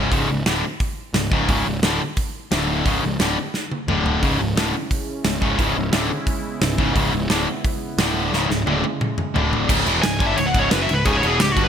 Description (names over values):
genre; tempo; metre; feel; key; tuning
heavy metal; 176 BPM; 4/4; straight; C# phrygian; A4 = 439 Hz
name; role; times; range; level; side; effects
distorted electric guitar; riff; 0.0-11.7 s; C#2 to G3; -22 LUFS; left 1 dB; overdrive
fuzz picked electric bass; bass; 0.0-11.7 s; C#1 to G1; -25 LUFS; equal; overdrive
big rock drum kit; drums; 0.1-11.6 s; crash cymbal, hi-hat, kick drum, snare drum, toms; -22 LUFS; right 1 dB; gated reverb
sweeping resonant pad; sustained chords; 4.2-9.7 s; C#3 to D5; -30 LUFS; right 2 dB; chorus
high-gain lead guitar; melody; 10.0-11.7 s; F#4 to G#5; -20 LUFS; equal; distortion
room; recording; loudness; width
light reverb, studio reverb; bright 1980s-style digital production; -18 LUFS; side -8 dB against mid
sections
0.0-9.7 A section; 9.7-11.7 B section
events
drum fill 3.5-4.2, 8.3-9.7; lead electric guitar solo 9.7-11.7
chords
0.0 C#5; 2.5 D5; 2.9 C#5; 3.9 D5; 4.2 C#m; 8.0 D5; 8.3 C#m; 9.4 D5; 9.7 C#m